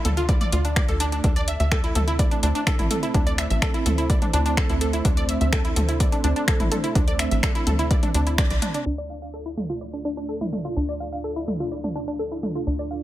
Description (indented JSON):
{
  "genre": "melodic techno",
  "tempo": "126 BPM",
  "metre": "4/4",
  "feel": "straight",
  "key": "D minor",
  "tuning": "A4 = 442 Hz",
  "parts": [
    { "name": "dark analog pad", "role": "sustained chords", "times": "0.0-13.0 s", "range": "A3 to E5", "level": "-31 LUFS", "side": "right 2 dB", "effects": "chorus, phaser, sidechain pumping" },
    { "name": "deep house drum kit", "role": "drums", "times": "0.0-12.5 s", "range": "finger snaps, hi-hat, toms", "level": "-27 LUFS", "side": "equal", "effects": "overdrive, low-pass filter on hats, low-pass filter on snare, low-pass filter on toms" },
    { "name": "wide unison pluck", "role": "arpeggios", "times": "0.1-12.9 s", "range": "D4 to F5", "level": "-27 LUFS", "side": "right 1 dB", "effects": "sidechain pumping, dub echo" },
    { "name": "tight sequencer bass", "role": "bass", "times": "0.1-13.0 s", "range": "A1 to D2", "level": "-25 LUFS", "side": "equal", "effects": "sidechain pumping" },
    { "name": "electronic kick drum", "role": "drums", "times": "0.3-8.5 s", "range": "none", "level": "-22 LUFS", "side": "equal", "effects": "overdrive" }
  ],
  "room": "digital ambience",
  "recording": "low-pass filter",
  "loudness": "-20 LUFS",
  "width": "side -14 dB against mid",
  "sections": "0.0-8.9 A section; 8.9-13.0 B section",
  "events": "band accent 8.4; filter sweep on drum 8.9-13.0; filter sweep 8.9-13.0",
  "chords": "0.0 Dm; 1.2 Am; 8.9 Dm"
}